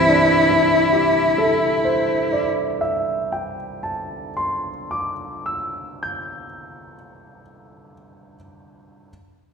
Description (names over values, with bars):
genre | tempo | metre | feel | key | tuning
classical, impressionist duo for cello and grand piano | 27 BPM (dotted quarters) | 12/8 | rubato | C major | A4 = 439 Hz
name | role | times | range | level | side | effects
rich cello | melody | 0.0-2.5 s | E4 | -17 LUFS | left 1 dB | none
warm grand piano | accompaniment | 0.0-9.1 s | C2 to G6 | -22 LUFS | right 1 dB | none
room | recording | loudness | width
wet scoring stage reverb, RT60 1.8 s | heard from further back in the room | -18 LUFS | side -5 dB against mid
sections
0.0-6.9 A section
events
none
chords
0.0 C69